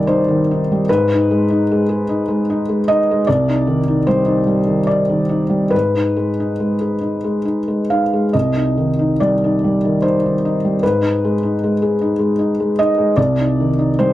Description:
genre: neoclassical minimalist piano.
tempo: 68-78 BPM.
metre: 3/4.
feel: rubato.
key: C harmonic minor.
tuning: A4 = 440 Hz.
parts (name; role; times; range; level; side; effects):
felt-muted upright piano; solo; 0.0-14.1 s; C2 to F5; -14 LUFS; equal; none.
room: moderate booth ambience, RT60 0.2 s.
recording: none.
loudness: -14 LUFS.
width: side -15 dB against mid.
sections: 0.0-14.1 A section.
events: none.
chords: 0.0 Cmadd9; 0.9 Abm; 3.3 Cmadd9; 5.7 Abm; 8.3 Cmadd9; 10.8 Abm; 13.2 Cm.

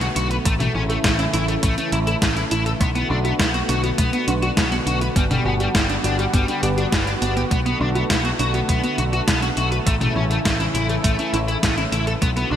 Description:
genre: synthwave.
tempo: 102 BPM.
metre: 4/4.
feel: straight.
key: unclear.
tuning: A4 = 442 Hz.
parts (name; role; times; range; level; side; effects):
lush unison pad; sustained chords; 0.0-12.6 s; C#3 to F#4; -26 LUFS; equal; chorus, sidechain pumping.
soft round pluck; arpeggios; 0.0-12.6 s; A3 to F#5; -29 LUFS; right 2 dB; chorus, digital delay.
overdriven electric guitar; riff; 0.0-12.6 s; G3 to B4; -25 LUFS; left 2 dB; ensemble chorus, digital delay.
picked electric bass; bass; 0.0-12.6 s; G1 to B1; -24 LUFS; equal; none.
gated 80s digital drum machine; drums; 0.0-12.5 s; hi-hat, snare drum, toms; -24 LUFS; equal; gated reverb, gated reverb snare.
electronic kick drum; drums; 0.5-12.3 s; none; -23 LUFS; equal; none.
room: moderate lush hall reverb, RT60 2.7 s.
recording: bright 1980s-style digital production.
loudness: -18 LUFS.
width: side -10 dB against mid.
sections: 0.0-12.6 A section.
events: none.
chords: 0.5 A; 2.8 Bm7; 5.2 Gmaj7; 7.5 Bm7; 9.9 A.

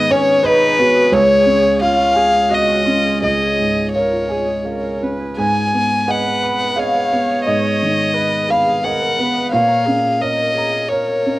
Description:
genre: neoclassical piano and strings.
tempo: 87 BPM.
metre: 3/4.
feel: rubato.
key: G# dorian.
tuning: A4 = 440 Hz.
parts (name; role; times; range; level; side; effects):
rich violin; melody; 0.0-11.4 s; B4 to G#5; -16 LUFS; left 2 dB; cassette tape.
dark grand piano; accompaniment; 0.0-11.4 s; C#2 to B5; -19 LUFS; right 2 dB; cassette tape.
dark viola; accompaniment; 0.0-11.4 s; B3 to C#5; -24 LUFS; right 2 dB; cassette tape.
concert harp; arpeggios; 0.0-11.4 s; C#4 to A#5; -28 LUFS; equal; cassette tape.
room: light reverb.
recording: home recording on cassette.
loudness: -13 LUFS.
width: side -17 dB against mid.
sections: 0.0-11.4 A section.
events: none.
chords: 0.0 G#m; 1.1 C#; 5.4 G#m; 9.5 A#m.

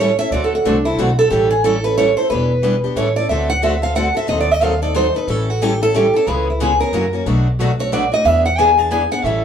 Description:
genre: acoustic string swing (jazz manouche).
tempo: 182 BPM.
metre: 3/4.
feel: swing 60% on 8ths.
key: A mixolydian.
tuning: A4 = 440 Hz.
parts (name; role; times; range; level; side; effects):
picked steel-string acoustic guitar; second line; 0.0-9.4 s; D4 to A5; -16 LUFS; right 2 dB; none.
picked steel-string acoustic guitar; accompaniment; 0.0-9.4 s; B2 to A4; -22 LUFS; left 6 dB; none.
picked steel-string acoustic guitar; accompaniment; 0.0-9.4 s; B2 to B4; -24 LUFS; right 2 dB; none.
upright bass; bass; 0.0-9.4 s; E1 to F#2; -21 LUFS; equal; none.
room: wet studio reverb, RT60 0.5 s.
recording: band playing live in one room.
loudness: -14 LUFS.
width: side -8 dB against mid.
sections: 0.0-9.4 A section.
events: steel-string acoustic guitar solo 0.0-9.4.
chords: 0.3 D7; 1.3 A7; 2.3 Em7; 3.0 A7; 3.3 D7; 4.3 D#dim7; 5.3 A7; 6.3 C#m7; 6.9 F#7; 7.3 Bm7; 8.3 E7.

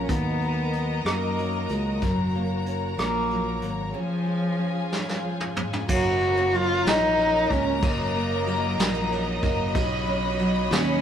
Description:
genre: six-eight pop ballad.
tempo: 62 BPM (dotted quarters).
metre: 6/8.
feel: straight.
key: F# major.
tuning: A4 = 440 Hz.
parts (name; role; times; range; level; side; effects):
dark cello; melody; 0.0-11.0 s; E#3 to F#4; -25 LUFS; equal; none.
nylon-string guitar; accompaniment; 0.0-11.0 s; F#2 to D#4; -32 LUFS; right 3 dB; none.
warm studio string section; sustained chords; 0.0-11.0 s; F#3 to B5; -29 LUFS; left 2 dB; none.
modern bright fingered electric bass; bass; 0.0-11.0 s; F#1 to F#2; -29 LUFS; equal; none.
vintage brush drum kit; drums; 0.1-10.9 s; crash cymbal, hi-hat, kick drum, ride cymbal, rim click, snare drum, toms; -28 LUFS; equal; none.
room: moderate stone room reverb, RT60 1.1 s.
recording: rough rehearsal-room recording.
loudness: -22 LUFS.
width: side -9 dB against mid.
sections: 0.0-5.9 A section; 5.9-11.0 B section.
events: drum fill 4.9-5.9.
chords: 0.1 D#m; 2.0 F#; 4.0 C#; 5.9 F#; 9.8 Badd9.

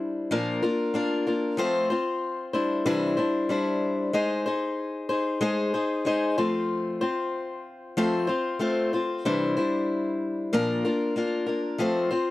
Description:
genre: rock.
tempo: 94 BPM.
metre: 4/4.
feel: straight.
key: unclear.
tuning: A4 = 440 Hz.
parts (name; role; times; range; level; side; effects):
picked steel-string acoustic guitar; solo; 0.0-12.3 s; Bb2 to C5; -24 LUFS; left 2 dB; none.
room: little or no reverb.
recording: dry, close 1970s-style studio recording.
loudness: -24 LUFS.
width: side -16 dB against mid.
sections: 0.0-12.3 A section.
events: none.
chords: 0.3 Bb; 1.6 F; 2.5 Cadd9; 4.1 Ab; 6.4 F; 9.2 Cadd9; 10.5 Bb; 11.8 F.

